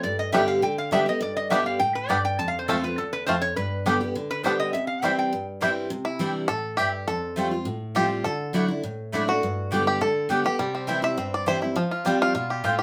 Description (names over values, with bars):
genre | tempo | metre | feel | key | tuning
bluegrass | 205 BPM | 4/4 | straight | C major | A4 = 440 Hz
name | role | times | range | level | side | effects
lap resonator guitar | melody | 0.0-5.5 s | A4 to A5 | -29 LUFS | equal | none
picked steel-string acoustic guitar | accompaniment | 0.0-12.8 s | E2 to G4 | -29 LUFS | equal | none
bluegrass banjo | melody | 0.3-12.8 s | F3 to E5 | -28 LUFS | equal | none
mandolin | stabs | 0.3-12.7 s | A3 to A5 | -29 LUFS | equal | none
room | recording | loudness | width
moderate studio ambience, RT60 0.4 s | none | -25 LUFS | mono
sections
0.0-5.9 A section; 5.9-12.8 B section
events
five-string banjo solo 5.9-12.8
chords
0.0 G; 2.4 F; 3.6 G; 4.7 C; 5.9 Cadd9; 7.1 Fadd9; 8.2 Dadd9; 9.4 G; 10.6 C; 11.8 Fsus2